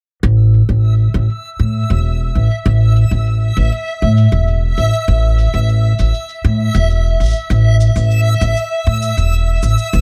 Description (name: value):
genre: folktronica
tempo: 99 BPM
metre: 4/4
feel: straight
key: unclear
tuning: A4 = 437 Hz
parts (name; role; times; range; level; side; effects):
- upright bass; bass; 0.2-10.0 s; E1 to A2; -14 LUFS; equal; none
- shaker; drums; 0.2-10.0 s; none; -38 LUFS; equal; overdrive, low-pass filter on perc, low-pass filter on room
- backwards swelling texture; texture; 0.9-10.0 s; E5 to E6; -24 LUFS; equal; built-in reverb
room: little or no reverb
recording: none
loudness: -14 LUFS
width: mono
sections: 0.2-10.0 A section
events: filter sweep on drum 0.2-10.0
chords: 0.2 A5